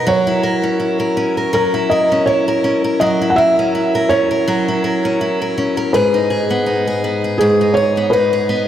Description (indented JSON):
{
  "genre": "folktronica",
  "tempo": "82 BPM",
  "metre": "4/4",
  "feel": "swing 56% on 16ths",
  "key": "unclear",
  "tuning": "A4 = 440 Hz",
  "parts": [
    { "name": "picked steel-string acoustic guitar", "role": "arpeggios", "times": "0.0-8.7 s", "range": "G#2 to A#4", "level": "-16 LUFS", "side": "equal", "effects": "digital delay" },
    { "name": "felt-muted upright piano", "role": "melody", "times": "0.1-8.7 s", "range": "G#4 to F#5", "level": "-16 LUFS", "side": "equal", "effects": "digital delay" }
  ],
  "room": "wet scoring stage reverb, RT60 1.9 s",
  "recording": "none",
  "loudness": "-13 LUFS",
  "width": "side -10 dB against mid",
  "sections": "0.0-8.7 A section",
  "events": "none",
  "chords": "0.1 F#7; 5.9 G#m"
}